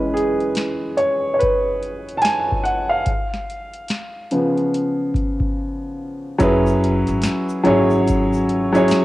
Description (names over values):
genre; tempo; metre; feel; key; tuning
lo-fi hip hop; 72 BPM; 4/4; swing 63% on 16ths; unclear; A4 = 439 Hz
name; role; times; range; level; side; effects
warm upright piano; accompaniment; 0.0-9.0 s; C#3 to A5; -18 LUFS; equal; low-pass filter, cassette tape
booming analog drum machine; drums; 0.2-9.0 s; hi-hat, kick drum, snare drum; -25 LUFS; left 1 dB; vintage 12-bit sampler grit, cassette tape
upright bass; bass; 6.4-8.9 s; F#1 to G#1; -24 LUFS; left 1 dB; none
tube shaker; percussion; 6.4-9.0 s; none; -43 LUFS; left 6 dB; none
room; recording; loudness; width
light reverb, small room ambience; home recording on cassette; -17 LUFS; side -16 dB against mid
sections
0.0-6.4 A section; 6.4-9.0 B section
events
upright piano solo 0.0-6.4; break 5.6-6.4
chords
0.0 E6; 3.1 C#7; 6.4 F#9sus4